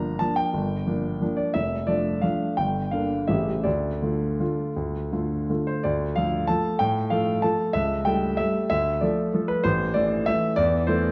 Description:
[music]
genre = classical, piano waltz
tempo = 156-202 BPM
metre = 3/4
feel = rubato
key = D minor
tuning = A4 = 440 Hz
[part]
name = warm grand piano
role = solo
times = 0.0-11.1 s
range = F1 to Bb5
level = -25 LUFS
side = equal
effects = none
[sound]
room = wet recital hall reverb, RT60 1.5 s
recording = worn, warbling old tape, cassette tape, warbly pitch drift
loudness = -25 LUFS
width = mono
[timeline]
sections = 0.0-5.8 A section; 5.8-11.1 B section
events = none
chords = 0.0 Gm7; 1.6 Dm/F; 2.6 Gm; 3.3 A7; 3.6 Dm; 7.8 A7/C#; 8.7 Dm; 9.7 Am

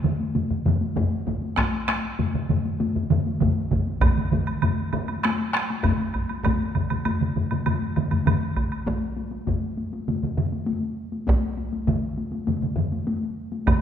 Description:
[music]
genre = japanese traditional, taiko drum ensemble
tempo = 99 BPM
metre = 4/4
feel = straight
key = none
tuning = none
[part]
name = solo taiko drums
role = percussion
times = 0.0-13.8 s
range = none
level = -28 LUFS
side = left 3 dB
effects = none
[part]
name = taiko ensemble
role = percussion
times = 0.0-13.8 s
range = none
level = -27 LUFS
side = left 3 dB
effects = none
[part]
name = taiko ensemble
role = percussion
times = 0.0-13.8 s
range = none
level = -27 LUFS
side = right 5 dB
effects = none
[part]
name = taiko ensemble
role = percussion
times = 1.0-13.8 s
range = none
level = -26 LUFS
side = right 1 dB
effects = none
[part]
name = woodblock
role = percussion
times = 4.0-8.9, 13.7-13.8 s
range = none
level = -32 LUFS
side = right 5 dB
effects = none
[sound]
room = wet scoring stage reverb, RT60 1.9 s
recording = minimal, uncompressed stereo recording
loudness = -22 LUFS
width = side -9 dB against mid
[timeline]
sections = 0.0-8.9 A section; 8.9-13.8 B section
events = none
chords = none

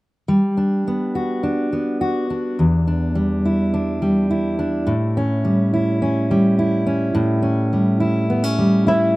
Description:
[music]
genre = pop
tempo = 105 BPM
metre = 4/4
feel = straight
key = A mixolydian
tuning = A4 = 441 Hz
[part]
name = fingerpicked steel-string acoustic guitar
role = accompaniment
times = 0.3-9.2 s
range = E2 to F#4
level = -17 LUFS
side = equal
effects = none
[part]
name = flamenco guitar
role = melody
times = 8.9-9.2 s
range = E4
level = -16 LUFS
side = left 1 dB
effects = none
[sound]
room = little or no reverb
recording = recorded outdoors, with no room sound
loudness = -17 LUFS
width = side -20 dB against mid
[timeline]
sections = 0.3-9.2 A section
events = none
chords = 0.3 Gmaj7; 2.6 Em7; 4.9 A7

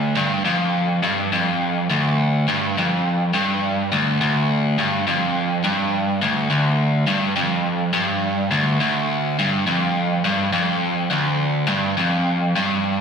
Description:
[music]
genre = rock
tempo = 104 BPM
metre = 4/4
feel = straight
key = D minor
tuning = A4 = 439 Hz
[part]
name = overdriven electric guitar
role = solo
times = 0.0-13.0 s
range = D2 to G2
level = -18 LUFS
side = equal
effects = slapback echo
[sound]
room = moderate club reverb, RT60 0.6 s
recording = live gig heard through the venue's PA, recital hall reverb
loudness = -18 LUFS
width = side -6 dB against mid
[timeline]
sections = 0.0-13.0 A section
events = none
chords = none

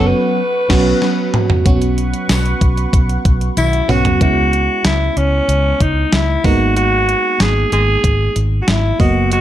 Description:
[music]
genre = 1980s-style pop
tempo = 94 BPM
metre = 4/4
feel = straight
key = unclear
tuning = A4 = 440 Hz
[part]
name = growling alto saxophone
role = melody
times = 0.0-9.4 s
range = C#4 to B4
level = -17 LUFS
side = equal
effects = ping-pong delay
[part]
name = FM electric piano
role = accompaniment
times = 0.0-9.4 s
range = F#3 to D#5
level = -20 LUFS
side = right 2 dB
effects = chorus
[part]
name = phased analog pad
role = sustained chords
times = 0.0-4.2 s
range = B4 to C#6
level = -27 LUFS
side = equal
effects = phaser, chorus
[part]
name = vintage muted fingered electric bass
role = bass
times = 0.0-9.4 s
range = F#1 to C#2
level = -17 LUFS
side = equal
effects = none
[part]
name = clean 12-bit digital drum machine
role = drums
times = 0.7-9.4 s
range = crash cymbal, hi-hat, kick drum, snare drum, toms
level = -16 LUFS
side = equal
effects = none
[part]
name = tambourine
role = percussion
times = 2.3-3.7 s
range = none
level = -32 LUFS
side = left 10 dB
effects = none
[sound]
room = light reverb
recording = dark, warm production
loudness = -12 LUFS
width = side -12 dB against mid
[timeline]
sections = 0.0-1.7 A section; 1.7-4.2 B section; 4.2-9.4 C section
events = band accent 0.0-1.7; drum fill 1.0-1.7, 3.6-4.2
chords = 0.4 Bsus2; 4.2 C#m7; 6.4 G#madd9

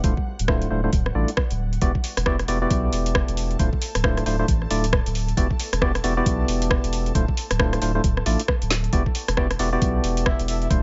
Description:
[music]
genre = UK garage, two-step garage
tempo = 135 BPM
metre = 4/4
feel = swing 60% on 16ths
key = E minor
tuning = A4 = 441 Hz
[part]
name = ethereal airy pad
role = sustained chords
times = 0.0-10.8 s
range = G3 to A5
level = -41 LUFS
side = equal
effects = ensemble chorus, built-in reverb, sidechain pumping
[part]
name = percussive organ stab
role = stabs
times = 0.0-10.8 s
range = A3 to D5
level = -28 LUFS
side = equal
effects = chorus, tape echo
[part]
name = saturated sub bass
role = bass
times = 0.0-10.8 s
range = D1 to B1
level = -27 LUFS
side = equal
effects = none
[part]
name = electronic kick drum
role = drums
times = 0.0-10.8 s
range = none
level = -25 LUFS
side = equal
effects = overdrive
[part]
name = garage drum kit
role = drums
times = 0.0-10.8 s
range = hi-hat, rim click, snare drum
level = -29 LUFS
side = equal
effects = overdrive
[part]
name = breathy flute-like synth lead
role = melody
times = 10.3-10.7 s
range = E5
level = -34 LUFS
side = equal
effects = chorus
[sound]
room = little or no reverb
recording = nothing above 7.6 kHz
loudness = -22 LUFS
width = mono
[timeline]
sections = 0.0-10.8 A section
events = drum fill 8.7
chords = 0.0 Dm9; 1.8 Em9; 3.6 Dm9; 5.4 Em9; 7.2 Dm9; 8.9 Em9

